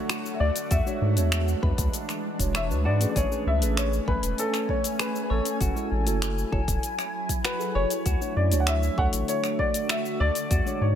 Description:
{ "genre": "sunset chillout", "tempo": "98 BPM", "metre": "4/4", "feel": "straight", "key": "unclear", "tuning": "A4 = 442 Hz", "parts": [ { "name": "dark baby grand piano", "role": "melody", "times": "0.0-11.0 s", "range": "A4 to F#5", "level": "-30 LUFS", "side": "left 2 dB", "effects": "tape echo" }, { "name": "mellow tine electric piano", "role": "accompaniment", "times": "0.0-10.9 s", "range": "G#3 to G#5", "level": "-32 LUFS", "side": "moving between left 3 dB and right 6 dB", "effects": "slow stereo tremolo, auto-pan, digital delay" }, { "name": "shimmering ambient pad", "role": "sustained chords", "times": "0.0-11.0 s", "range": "D3 to G#5", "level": "-33 LUFS", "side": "right 1 dB", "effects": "chorus, built-in reverb" }, { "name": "clean electric guitar", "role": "arpeggios", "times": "0.1-10.8 s", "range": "F#4 to D5", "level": "-38 LUFS", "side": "left 3 dB", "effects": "vibrato effect, digital delay" }, { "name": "deep house drum kit", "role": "drums", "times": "0.1-10.8 s", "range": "cabasa, finger snaps, hi-hat", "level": "-31 LUFS", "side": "left 2 dB", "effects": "overdrive" }, { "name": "round analog bass", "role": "bass", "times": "0.4-11.0 s", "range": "E1 to G#2", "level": "-25 LUFS", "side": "equal", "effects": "none" }, { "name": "electronic kick drum", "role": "drums", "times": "0.7-10.6 s", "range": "none", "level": "-28 LUFS", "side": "equal", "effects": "overdrive" } ], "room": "light reverb, digital ambience", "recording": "none", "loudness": "-23 LUFS", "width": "side -9 dB against mid", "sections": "0.0-11.0 A section", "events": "none", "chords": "0.0 Dmaj7; 0.7 E13; 3.2 Amaj9; 5.6 F#m9; 8.1 Dmaj7", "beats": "0.10 | 0.71 1.32 1.94 2.55 | 3.16 3.77 4.38 5.00 | 5.61 6.22 6.83 7.45 | 8.06 8.67 9.28 9.89 | 10.51" }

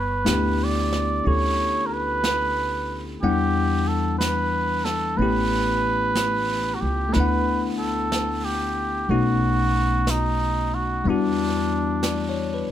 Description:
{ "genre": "jazz ballad", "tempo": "61 BPM", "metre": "4/4", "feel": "swing 67% on 8ths", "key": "unclear", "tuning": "A4 = 440 Hz", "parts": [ { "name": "trumpet with cup mute", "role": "melody", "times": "0.0-12.7 s", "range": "D4 to D5", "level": "-24 LUFS", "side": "right 2 dB", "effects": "plate reverb" }, { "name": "upright bass", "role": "bass", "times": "0.0-12.7 s", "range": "G1 to E2", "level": "-26 LUFS", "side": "equal", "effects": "none" }, { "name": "bell-like tine electric piano", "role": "accompaniment", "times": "0.2-12.7 s", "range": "G3 to F#5", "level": "-25 LUFS", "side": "left 4 dB", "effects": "none" }, { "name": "jazz brush drum kit", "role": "drums", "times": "0.3-12.7 s", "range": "brushed snare drum, hi-hat, snare drum", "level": "-32 LUFS", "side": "right 2 dB", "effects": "none" } ], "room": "light reverb", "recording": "none", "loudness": "-20 LUFS", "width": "side -11 dB against mid", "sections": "0.0-12.7 A section", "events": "none", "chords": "0.0 G69; 3.2 Em7; 5.2 A9; 7.1 D6; 9.1 B7; 11.1 Em7", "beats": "0.28 1.26 2.25 | 3.23 4.21 5.19 6.17 | 7.14 8.12 9.10 10.07 | 11.05 12.03" }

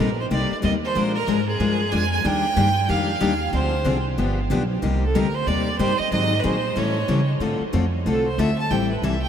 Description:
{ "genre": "acoustic string swing (jazz manouche)", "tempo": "186 BPM", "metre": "4/4", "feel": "swing 61% on 8ths", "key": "unclear", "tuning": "A4 = 440 Hz", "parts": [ { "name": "bright violin", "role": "melody", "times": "0.0-9.3 s", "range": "Ab4 to A5", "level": "-24 LUFS", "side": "right 4 dB", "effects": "none" }, { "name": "picked steel-string acoustic guitar", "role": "accompaniment", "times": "0.0-9.1 s", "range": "C3 to Bb4", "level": "-23 LUFS", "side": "left 4 dB", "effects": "none" }, { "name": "upright bass", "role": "bass", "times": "0.0-9.3 s", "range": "G1 to C#3", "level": "-24 LUFS", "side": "right 1 dB", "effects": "none" } ], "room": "wet huge ambient reverb, RT60 7.7 s", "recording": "in a vast, echoing space", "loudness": "-19 LUFS", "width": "side -8 dB against mid", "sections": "0.0-7.4 A section; 7.4-9.3 B section", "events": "violin solo 7.4-9.3", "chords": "0.0 Cm7; 0.9 Bb7; 2.2 Ebmaj9; 3.5 Dm7b5; 4.2 G7; 4.8 Cm7; 6.1 Ab7; 6.8 A7; 7.4 Dm7; 8.7 Am7", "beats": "0.30 0.63 | 0.95 1.27 1.60 1.92 | 2.24 2.57 2.89 3.21 | 3.54 3.86 4.18 4.50 | 4.83 5.15 5.47 5.80 | 6.12 6.44 6.77 7.09 | 7.41 7.74 8.06 8.38 | 8.71 9.03" }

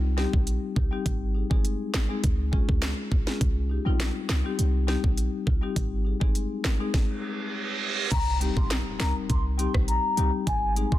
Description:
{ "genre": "dancehall", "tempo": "102 BPM", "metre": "4/4", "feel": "straight", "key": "unclear", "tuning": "A4 = 440 Hz", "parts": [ { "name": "clean 808-style bass", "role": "bass", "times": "0.0-11.0 s", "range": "G1 to Db2", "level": "-26 LUFS", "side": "equal", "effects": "none" }, { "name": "marimba with medium hard mallets", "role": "accompaniment", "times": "0.2-10.9 s", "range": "G3 to Bb4", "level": "-31 LUFS", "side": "left 5 dB", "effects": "sidechain pumping" }, { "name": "island pop drum kit", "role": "drums", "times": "0.2-11.0 s", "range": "crash cymbal, handclaps, hi-hat, kick drum, rim click, snare drum", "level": "-26 LUFS", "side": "equal", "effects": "none" }, { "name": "reverse cymbal and impact", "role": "sound effects", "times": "7.2-10.5 s", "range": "none", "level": "-32 LUFS", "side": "right 4 dB", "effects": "none" }, { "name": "mellow hollow baroque flute", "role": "melody", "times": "8.1-11.0 s", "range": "Ab5 to C6", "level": "-29 LUFS", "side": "left 3 dB", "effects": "ping-pong delay" } ], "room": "digital ambience", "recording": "dense, heavily limited modern master", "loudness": "-24 LUFS", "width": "side -14 dB against mid", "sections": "0.0-8.1 A section; 8.1-11.0 B section", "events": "reverse cymbal 7.2-8.1; impact 8.1-10.5", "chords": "0.0 Cm; 1.1 Ab; 2.2 Db; 3.4 Cm; 5.8 Ab; 6.9 N.C.; 8.1 Cm; 10.5 Ab", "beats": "0.47 | 1.06 1.65 2.23 2.82 | 3.41 4.00 4.59 5.18 | 5.76 6.35 6.94 7.53 | 8.12 8.71 9.29 9.88 | 10.47" }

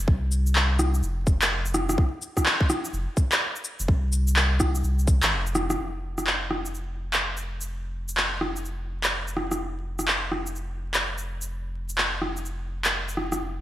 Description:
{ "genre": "future garage", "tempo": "126 BPM", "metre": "4/4", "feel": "swing 63% on 16ths", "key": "unclear", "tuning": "A4 = 440 Hz", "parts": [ { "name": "warm sub bass", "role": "bass", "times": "0.0-13.6 s", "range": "F1 to C2", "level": "-28 LUFS", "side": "equal", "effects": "sidechain pumping" }, { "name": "electronic kick drum", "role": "drums", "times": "0.1-5.2 s", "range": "none", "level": "-22 LUFS", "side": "equal", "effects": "overdrive" }, { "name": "electronic cabasa, shaker, handclaps and rim click", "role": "drums", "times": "0.3-13.4 s", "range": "none", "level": "-24 LUFS", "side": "equal", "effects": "overdrive, gated reverb" } ], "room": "light reverb", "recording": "bright 1980s-style digital production, vinyl crackle", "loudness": "-23 LUFS", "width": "side -13 dB against mid", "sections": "0.0-5.8 A section; 5.8-13.6 B section", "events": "none", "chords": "none", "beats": "| 0.08 0.55 1.03 1.51 | 1.98 2.46 2.93 3.41 | 3.89 4.36 4.84 5.32 | 5.79 6.27 6.74 7.22 | 7.70 8.17 8.65 9.12 | 9.60 10.08 10.55 11.03 | 11.51 11.98 12.46 12.93 | 13.41" }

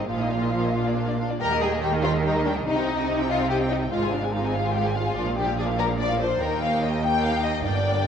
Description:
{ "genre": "quick classical-period movement for string orchestra", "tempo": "96 BPM (dotted quarters)", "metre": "6/8", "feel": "straight", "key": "Eb major", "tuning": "A4 = 440 Hz", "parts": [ { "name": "warm symphonic violin section", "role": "melody", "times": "0.0-8.1 s", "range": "D5 to Ab5", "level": "-31 LUFS", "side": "left 3 dB", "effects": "none" }, { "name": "rich symphonic viola section", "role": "accompaniment", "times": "0.0-8.1 s", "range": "F3 to Bb4", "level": "-29 LUFS", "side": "equal", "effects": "none" }, { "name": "clear symphonic double bass section", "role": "bass", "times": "0.0-8.1 s", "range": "G1 to Eb2", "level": "-30 LUFS", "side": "right 5 dB", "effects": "none" }, { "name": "rich symphonic cello section", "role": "bass", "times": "0.0-8.1 s", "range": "Eb2 to Eb3", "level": "-27 LUFS", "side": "right 2 dB", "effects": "none" }, { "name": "warm symphonic violin section", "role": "second line", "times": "0.1-8.1 s", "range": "D4 to G5", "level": "-26 LUFS", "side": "left 4 dB", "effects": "none" } ], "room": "wet concert hall reverb, RT60 2.3 s", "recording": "worn, warbling old tape, cassette tape, warbly pitch drift", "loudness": "-22 LUFS", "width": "side -8 dB against mid", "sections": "0.0-1.4 A section; 1.4-8.1 B section", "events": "none", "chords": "0.1 Bbsus4; 0.7 Bb; 1.4 Eb; 2.7 Cm; 3.9 Fm/Ab; 5.2 Bb; 6.4 Eb", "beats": "| 0.09 0.74 | 1.40 2.04 | 2.67 3.30 | 3.92 4.54 | 5.16 5.78 | 6.40 7.02 | 7.64" }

